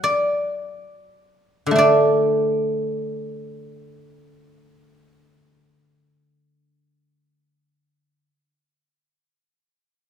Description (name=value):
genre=chinese traditional, Chinese solo plucked strings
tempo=free time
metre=none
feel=none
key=D gong mode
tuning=A4 = 440 Hz
part: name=guzheng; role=solo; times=0.0-8.3 s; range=D3 to F#5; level=-18 LUFS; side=equal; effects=none
room=moderate recital hall reverb, RT60 1.6 s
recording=minimal, uncompressed stereo recording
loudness=-17 LUFS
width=side -8 dB against mid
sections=0.0-1.8 A section; 1.8-5.7 B section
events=slowing down 0.0-1.8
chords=none